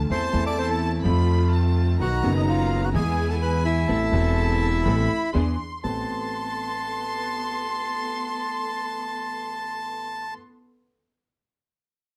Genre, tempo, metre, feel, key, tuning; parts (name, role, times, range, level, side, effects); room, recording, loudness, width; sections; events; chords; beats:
tango; 126 BPM; 4/4; rubato; A minor; A4 = 440 Hz
rich chamber violin section; second line; 0.0-10.3 s; G#5 to C6; -35 LUFS; equal
warm concert grand piano; accompaniment; 0.0-10.3 s; E1 to A4; -30 LUFS; equal
rich symphonic string section; stabs; 0.0-10.3 s; F#3 to A4; -36 LUFS; equal
upright bass; bass; 0.0-6.0 s; E1 to F2; -26 LUFS; equal
bandoneon; melody; 0.1-10.3 s; D#4 to D6; -30 LUFS; equal
light reverb; dry, close 1970s-style studio recording; -24 LUFS; mono
0.0-5.8 A section; 5.8-9.7 B section
0.1 Am/E; 1.1 F; 2.0 B; 2.9 E; 3.9 Amadd9; 5.3 E7; 5.8 Amadd9
| 0.10 0.58 1.05 1.53 | 2.00 2.48 2.94 3.42 | 3.89 4.37 4.85 5.34 | 5.83 6.32 6.79 7.26 | 7.74 8.21 8.69 9.17